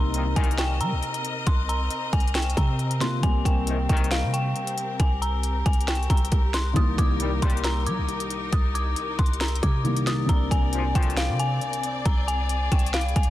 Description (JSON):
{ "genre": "hip hop, trap", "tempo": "136 BPM", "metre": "4/4", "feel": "half-time", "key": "C minor", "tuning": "A4 = 440 Hz", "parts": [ { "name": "dark detuned synth bell", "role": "melody", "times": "0.0-13.3 s", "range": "F5 to Eb6", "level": "-30 LUFS", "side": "left 2 dB", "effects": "chorus, low-pass filter, digital delay" }, { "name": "dark grand piano", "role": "accompaniment", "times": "0.0-13.3 s", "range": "C2 to F4", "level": "-31 LUFS", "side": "left 1 dB", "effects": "low-pass filter" }, { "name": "clear studio string section", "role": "sustained chords", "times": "0.0-13.3 s", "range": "C4 to Eb5", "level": "-34 LUFS", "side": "left 3 dB", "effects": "none" }, { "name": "warm 808-style bass", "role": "bass", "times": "0.0-13.3 s", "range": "C2 to G3", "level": "-26 LUFS", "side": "equal", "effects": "none" }, { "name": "clear brass ensemble", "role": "stabs", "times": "0.1-0.8, 3.7-4.3, 7.2-7.8, 10.7-11.4 s", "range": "C2 to G3", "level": "-34 LUFS", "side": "left 5 dB", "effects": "digital delay" }, { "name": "trap drum kit", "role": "drums", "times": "0.1-13.3 s", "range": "hi-hat, kick drum, snare drum", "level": "-24 LUFS", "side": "equal", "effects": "none" } ], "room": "little or no reverb", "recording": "dense, heavily limited modern master", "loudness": "-22 LUFS", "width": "side -14 dB against mid", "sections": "0.0-13.3 A section", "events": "none", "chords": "0.0 Cm7; 3.2 Abmaj7/C; 6.8 Eb/C; 10.3 Bb/C" }